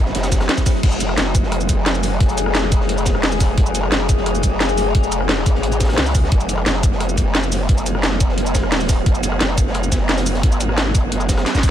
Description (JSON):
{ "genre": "dark technical drum and bass", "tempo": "175 BPM", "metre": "4/4", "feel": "straight", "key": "F# minor", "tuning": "A4 = 436 Hz", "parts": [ { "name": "metallic inharmonic drone", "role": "sustained chords", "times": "0.0-11.7 s", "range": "F#3 to G#4", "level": "-23 LUFS", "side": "equal", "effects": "chorus, built-in reverb, sidechain pumping" }, { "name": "growl bass", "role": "bass", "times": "0.0-11.4 s", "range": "F#1 to C#2", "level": "-21 LUFS", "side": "equal", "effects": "chorus, overdrive, sidechain pumping" }, { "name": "crunchy breakbeat drum kit", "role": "drums", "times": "0.1-11.7 s", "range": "hi-hat, snare drum", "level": "-30 LUFS", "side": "equal", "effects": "none" }, { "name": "drum and bass drum kit", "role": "drums", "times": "0.1-11.7 s", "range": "cabasa, crash cymbal, hi-hat, rim click, snare drum", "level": "-22 LUFS", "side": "equal", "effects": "none" }, { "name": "electronic kick drum", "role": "drums", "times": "0.3-11.7 s", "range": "none", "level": "-17 LUFS", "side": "equal", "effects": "none" } ], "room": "little or no reverb", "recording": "none", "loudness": "-15 LUFS", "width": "side -10 dB against mid", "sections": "0.0-11.7 A section", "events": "drum fill 11.5", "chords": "0.0 F#madd9" }